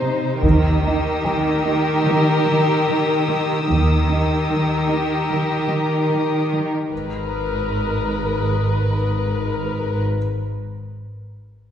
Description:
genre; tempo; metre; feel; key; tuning
cinematic, suspense film score; 74 BPM; 4/4; straight; G# harmonic minor; A4 = 440 Hz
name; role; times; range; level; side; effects
muted chamber violin section; second line; 0.0-10.0 s; Eb4 to C5; -22 LUFS; left 2 dB; none
muted studio cello section; riff; 0.0-6.8 s; C3 to D#4; -24 LUFS; right 1 dB; none
muted chamber cello section; bass; 0.0-10.0 s; G#2 to D#3; -23 LUFS; right 1 dB; none
felt-muted upright piano; texture; 0.0-6.9 s; Eb4 to Eb6; -35 LUFS; left 1 dB; none
muted chamber double bass section; bass; 0.4-10.0 s; G#1 to D#2; -23 LUFS; right 1 dB; none
taiko ensemble; drums; 0.4-2.0 s; none; -24 LUFS; equal; none
muted chamber violin section; texture; 0.4-9.7 s; D#6 to F#6; -31 LUFS; left 4 dB; none
room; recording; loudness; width
wet concert hall reverb, RT60 2.2 s; heard from further back in the room; -17 LUFS; side -9 dB against mid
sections
0.0-6.9 A section; 6.9-10.2 B section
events
none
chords
0.4 D#; 6.9 G#madd9

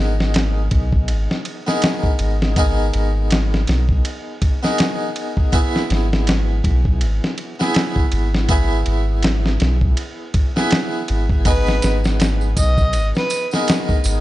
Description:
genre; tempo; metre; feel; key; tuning
trip hop; 81 BPM; 4/4; swing 57% on 16ths; G# minor; A4 = 442 Hz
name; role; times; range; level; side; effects
harpsichord; accompaniment; 0.0-14.2 s; B3 to B4; -24 LUFS; equal; tremolo, vintage 12-bit sampler grit, tape echo
soft dub sub bass; bass; 0.0-14.2 s; G#1 to B1; -18 LUFS; equal; none
dusty soul sampler-style drum kit; drums; 0.2-14.2 s; kick drum, ride cymbal, snare drum; -19 LUFS; equal; none
overdriven harmonica; melody; 11.5-13.5 s; B4 to D#5; -23 LUFS; equal; dub echo
tambourine; percussion; 11.5-14.2 s; none; -32 LUFS; right 5 dB; none
room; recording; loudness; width
small room reverb; dry, gritty hardware recording, nothing above 10.7 kHz; -16 LUFS; side -16 dB against mid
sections
0.0-14.2 A section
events
none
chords
0.0 G#madd9; 5.5 E/G#; 11.5 G#madd9

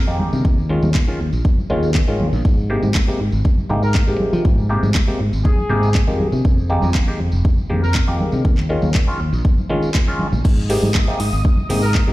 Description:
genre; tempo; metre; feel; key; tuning
filtered disco house; 120 BPM; 4/4; straight; Ab major; A4 = 440 Hz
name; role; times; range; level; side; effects
clav; accompaniment; 0.1-12.1 s; C3 to G4; -23 LUFS; equal; phaser, sidechain pumping, low-pass filter
modern bright fingered electric bass; bass; 0.1-12.1 s; F1 to F3; -19 LUFS; equal; sidechain pumping, low-pass filter
tambourine and congas; percussion; 0.1-12.1 s; none; -28 LUFS; right 1 dB; sidechain pumping on perc, low-pass filter on perc
electronic kick drum; drums; 0.4-12.1 s; none; -16 LUFS; equal; none
house drum kit; drums; 0.9-12.1 s; crash cymbal, handclaps, hi-hat; -27 LUFS; equal; sidechain pumping on cymbals, sidechain pumping on hats
clear trumpet section; melody; 3.8-8.0, 11.8-12.0 s; Ab4 to Bb4; -28 LUFS; left 1 dB; sidechain pumping, low-pass filter, ping-pong delay
string machine, full ensemble; sustained chords; 10.4-12.1 s; Eb6; -29 LUFS; equal; ensemble chorus, sidechain pumping, low-pass filter
room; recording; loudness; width
digital ambience; played on a big sound system in a bare room, large studio reverb; -15 LUFS; side -18 dB against mid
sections
0.0-12.1 A section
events
filter sweep 0.0-12.1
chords
0.4 Eb9sus4; 2.4 Abmaj9; 6.2 Fm11; 8.4 Eb9sus4; 10.4 Abmaj9

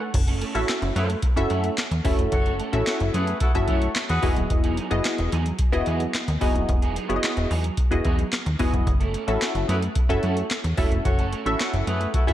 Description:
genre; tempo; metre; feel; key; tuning
early-eighties boogie funk; 110 BPM; 4/4; straight; F# dorian; A4 = 440 Hz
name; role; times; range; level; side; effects
funky polysynth comp; accompaniment; 0.0-12.3 s; B3 to F#5; -27 LUFS; left 1 dB; chorus, phaser, slapback echo
electric guitar at the edge of break-up; riff; 0.0-12.3 s; F#3 to A4; -32 LUFS; right 5 dB; ensemble chorus, slapback echo
plucky analog bass; bass; 0.1-12.3 s; D#1 to F#2; -25 LUFS; equal; none
booming analog drum machine; drums; 0.1-12.3 s; crash cymbal, handclaps, hi-hat, kick drum, snare drum; -24 LUFS; equal; none
dark horn section; second line; 0.5-4.3, 9.3-12.3 s; A3 to E5; -30 LUFS; left 2 dB; slapback echo
room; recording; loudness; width
moderate lush hall reverb, RT60 1.7 s; big arena sound; -21 LUFS; side -12 dB against mid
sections
0.1-12.3 A section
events
none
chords
0.1 F#m7; 4.2 Emaj9; 8.9 F#m7

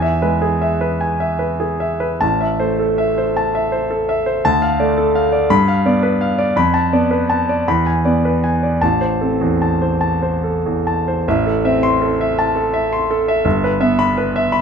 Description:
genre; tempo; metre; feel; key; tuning
classical, romantic character piece for solo piano; 47-58 BPM (dotted quarters); 6/8; rubato; A minor; A4 = 440 Hz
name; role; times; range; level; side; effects
clear concert grand piano; solo; 0.0-14.6 s; G1 to C6; -14 LUFS; equal; none
room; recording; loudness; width
moderate large studio reverb, RT60 0.9 s; none; -14 LUFS; side -6 dB against mid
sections
0.0-11.3 A section; 11.3-14.6 A section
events
none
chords
0.0 E; 2.2 Am; 4.4 Dm; 5.5 G7; 6.6 Bm7b5/F; 7.7 E7; 8.8 Am; 13.4 Em/G

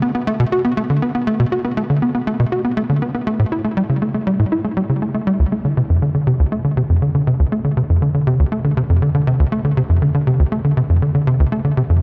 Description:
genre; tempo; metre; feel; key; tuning
ambient; 120 BPM; 4/4; straight; D minor from 5.4 s; A4 = 440 Hz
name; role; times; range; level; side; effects
tight sequencer bass; solo; 0.0-12.0 s; D2 to F#4; -17 LUFS; equal; analog chorus, delay
room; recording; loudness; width
wet huge ambient reverb, RT60 7.1 s; none; -17 LUFS; mono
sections
0.0-5.4 A section; 5.4-12.0 B section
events
none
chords
none

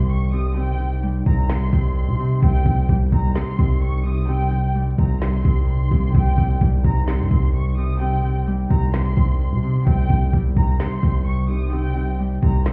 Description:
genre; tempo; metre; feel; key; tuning
hip hop, trap; 129 BPM; 4/4; half-time; C minor; A4 = 435 Hz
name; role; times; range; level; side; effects
warm studio violin section; melody; 0.0-12.7 s; G5 to Eb6; -33 LUFS; equal; slapback echo
Celtic harp; accompaniment; 0.0-12.7 s; C3 to G3; -27 LUFS; equal; none
ethereal airy pad; sustained chords; 0.0-12.7 s; C3 to Eb4; -30 LUFS; equal; none
distorted 808-style bass; bass; 0.0-12.7 s; C2 to C3; -24 LUFS; equal; distortion
impact; sound effects; 0.0-0.6 s; none; barely audible; none; none
trap drum kit; drums; 0.1-12.7 s; handclaps, hi-hat, kick drum, snare drum; -22 LUFS; equal; none
room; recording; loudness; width
little or no reverb; heard muffled through a wall, stone room reverb, vinyl crackle, EQ; -20 LUFS; mono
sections
0.0-12.7 A section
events
impact 0.0-0.6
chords
0.0 Cm

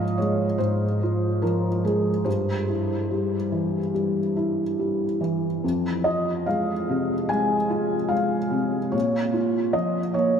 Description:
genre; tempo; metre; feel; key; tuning
neoclassical minimalist piano; 72 BPM; 4/4; rubato; F minor; A4 = 440 Hz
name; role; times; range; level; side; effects
felt-muted upright piano; solo; 0.0-10.4 s; F2 to Ab5; -22 LUFS; equal; wide subtle chorus, tape echo
room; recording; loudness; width
wet cathedral reverb, RT60 5.1 s; dreamy mix soaked in reverb; -22 LUFS; side -7 dB against mid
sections
0.0-10.4 A section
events
none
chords
0.0 Fm/Ab; 2.3 C/G; 5.6 Fm; 8.9 Bbm

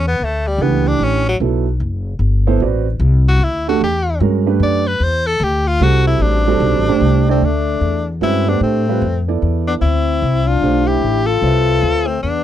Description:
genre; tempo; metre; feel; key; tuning
modal jazz; 150 BPM; 3/4; swing 65% on 8ths; D dorian from 7.4 s; A4 = 441 Hz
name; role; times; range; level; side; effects
bright tenor saxophone; melody; 0.0-12.4 s; F#3 to D5; -19 LUFS; left 2 dB; none
upright bass; bass; 0.0-12.4 s; F#1 to A2; -16 LUFS; left 1 dB; none
warm upright piano; accompaniment; 0.6-12.0 s; E3 to E5; -18 LUFS; right 11 dB; none
clear trombone; second line; 7.3-12.4 s; A3 to F4; -21 LUFS; left 15 dB; none
room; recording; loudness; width
little or no reverb; dry, close 1970s-style studio recording; -13 LUFS; side -11 dB against mid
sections
0.0-7.4 A section; 7.4-12.4 B section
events
tenor saxophone solo 0.0-7.4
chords
0.0 Bm11; 2.6 Am11; 7.4 Dm9

